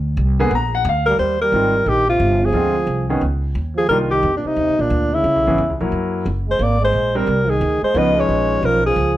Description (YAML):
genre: jazz, small-group swing and bop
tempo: 178 BPM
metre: 4/4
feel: swing 64% on 8ths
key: unclear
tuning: A4 = 440 Hz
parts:
  - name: upright bass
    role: bass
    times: 0.0-9.2 s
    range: Gb1 to Gb2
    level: -21 LUFS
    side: equal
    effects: none
  - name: warm concert grand piano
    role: accompaniment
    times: 0.4-8.9 s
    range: D3 to Bb5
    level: -21 LUFS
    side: left 1 dB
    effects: none
  - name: breathy alto saxophone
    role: melody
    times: 1.1-9.2 s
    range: D4 to Eb5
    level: -17 LUFS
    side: left 1 dB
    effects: none
  - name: breathy trombone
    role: second line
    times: 1.1-9.2 s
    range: Bb2 to Cb4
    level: -23 LUFS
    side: right 4 dB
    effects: none
room: light reverb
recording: none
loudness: -15 LUFS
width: side -14 dB against mid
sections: 0.0-1.2 A section; 1.2-9.2 B section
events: none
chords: 0.0 Bb9; 0.5 Bb; 1.2 Eb69; 2.5 Dm7b5; 3.2 Dbsus2; 3.9 Cm11; 5.2 Dbm7; 5.9 Gb7; 6.6 Abmaj9#11; 7.9 Db9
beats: 0.17 0.51 0.85 | 1.19 1.52 1.86 2.20 | 2.54 2.88 3.22 3.55 | 3.89 4.23 4.57 4.91 | 5.24 5.58 5.92 6.26 | 6.60 6.93 7.27 7.61 | 7.95 8.29 8.62 8.96